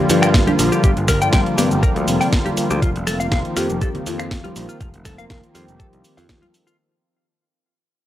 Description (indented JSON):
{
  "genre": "nu-disco, nu disco",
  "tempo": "121 BPM",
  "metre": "4/4",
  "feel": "swing 53% on 16ths",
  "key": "unclear",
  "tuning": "A4 = 436 Hz",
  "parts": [
    { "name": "soft octave-layered synth lead", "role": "melody", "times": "0.0-6.5 s", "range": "C4 to Bb4", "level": "-25 LUFS", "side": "equal", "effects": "chorus, phaser, tape echo" },
    { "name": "warm analog pad", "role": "accompaniment", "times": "0.0-6.5 s", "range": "D3 to A4", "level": "-21 LUFS", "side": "left 1 dB", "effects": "chorus, sidechain pumping" },
    { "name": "picked electric bass", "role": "bass", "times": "0.1-6.4 s", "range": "F1 to G2", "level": "-22 LUFS", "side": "equal", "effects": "none" },
    { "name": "house drum kit", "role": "drums", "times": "0.1-6.8 s", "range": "cabasa, finger snaps, hi-hat, snare drum", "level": "-24 LUFS", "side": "equal", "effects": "none" },
    { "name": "cabasa and congas", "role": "percussion", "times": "0.1-6.8 s", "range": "none", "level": "-29 LUFS", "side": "right 1 dB", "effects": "none" },
    { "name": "direct-recorded clean electric guitar", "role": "riff", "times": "0.2-6.8 s", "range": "F4 to G5", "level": "-24 LUFS", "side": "left 2 dB", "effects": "wide subtle chorus" },
    { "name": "electronic kick drum", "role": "drums", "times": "0.3-6.4 s", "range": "none", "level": "-18 LUFS", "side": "equal", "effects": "none" }
  ],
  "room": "little or no reverb",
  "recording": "dry, gritty hardware recording",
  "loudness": "-15 LUFS",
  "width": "side -13 dB against mid",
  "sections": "0.0-6.8 A section",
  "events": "drop 0.0-6.8; fade-out 0.0-6.8",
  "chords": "0.0 Gm7; 2.8 F7sus4"
}